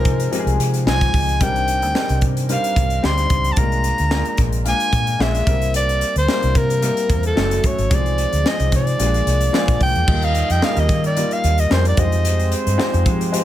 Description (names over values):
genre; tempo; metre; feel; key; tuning
polished 1980s jazz-funk pop; 111 BPM; 4/4; swing 54% on 16ths; C minor; A4 = 439 Hz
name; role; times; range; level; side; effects
breathy soprano saxophone; melody; 0.0-12.5 s; A4 to C6; -22 LUFS; equal; none
warm grand piano; accompaniment; 0.0-13.4 s; F3 to C5; -24 LUFS; left 3 dB; analog chorus
vintage muted fingered electric bass; bass; 0.0-13.4 s; F#1 to F3; -19 LUFS; equal; none
crisp fusion drum kit; drums; 0.0-13.4 s; crash cymbal, hi-hat, kick drum, snare drum; -21 LUFS; equal; none
mellow horn section; second line; 10.1-13.4 s; Ab3 to Eb5; -27 LUFS; right 4 dB; none
room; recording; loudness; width
small room ambience; none; -15 LUFS; side -12 dB against mid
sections
0.0-10.1 A section; 10.1-13.4 B section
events
none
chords
0.0 Fm7/C; 1.4 Cm9; 3.6 Bb7; 5.5 C7; 7.4 F#m7; 7.9 Fm7/C; 9.0 Bb7; 10.1 Ebmaj9; 12.0 Fm9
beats
0.32 0.86 | 1.41 1.95 2.49 3.03 | 3.57 4.12 4.66 5.20 | 5.74 6.28 6.82 7.37 | 7.91 8.45 8.99 9.53 | 10.07 10.62 11.16 11.70 | 12.25 12.79 13.33